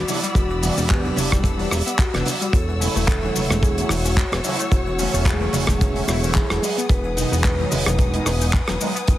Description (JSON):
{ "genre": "nu-disco, nu disco", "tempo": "110 BPM", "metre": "4/4", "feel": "swing 56% on 16ths", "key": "unclear", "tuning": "A4 = 440 Hz", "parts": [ { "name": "vibraphone with medium mallets", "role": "melody", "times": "0.0-9.2 s", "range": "E4 to C#5", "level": "-28 LUFS", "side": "equal", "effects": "tape echo" }, { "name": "dark symphonic string section", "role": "sustained chords", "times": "0.0-9.2 s", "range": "B4 to E6", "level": "-30 LUFS", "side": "left 1 dB", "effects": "sidechain pumping" }, { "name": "chorused synth bass", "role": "bass", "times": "0.0-9.2 s", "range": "E1", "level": "-24 LUFS", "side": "equal", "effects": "none" }, { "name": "mellow synth brass", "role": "accompaniment", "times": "0.1-8.9 s", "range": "B2 to E4", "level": "-27 LUFS", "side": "equal", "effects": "chorus, phaser, sidechain pumping" }, { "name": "analog pluck", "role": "arpeggios", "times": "0.1-9.1 s", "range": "C#3 to D#4", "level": "-31 LUFS", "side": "left 3 dB", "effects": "chorus, sidechain pumping, tape echo" }, { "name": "damped 70s drum kit", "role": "drums", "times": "0.1-9.2 s", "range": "cabasa, handclaps, hi-hat, rim click", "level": "-25 LUFS", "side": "right 1 dB", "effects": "small room ambience" }, { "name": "congas and egg shaker", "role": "percussion", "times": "0.1-9.2 s", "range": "none", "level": "-31 LUFS", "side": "right 2 dB", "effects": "none" }, { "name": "kick drum", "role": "drums", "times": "0.3-9.2 s", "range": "none", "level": "-19 LUFS", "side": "equal", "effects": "small room ambience" } ], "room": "light reverb, studio ambience", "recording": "heavily compressed radio sound, multiband compression", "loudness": "-18 LUFS", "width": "side -14 dB against mid", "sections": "0.0-9.2 A section", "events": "none", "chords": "0.0 Cmaj9#11/E; 2.5 A6/E; 6.6 G#m7/E" }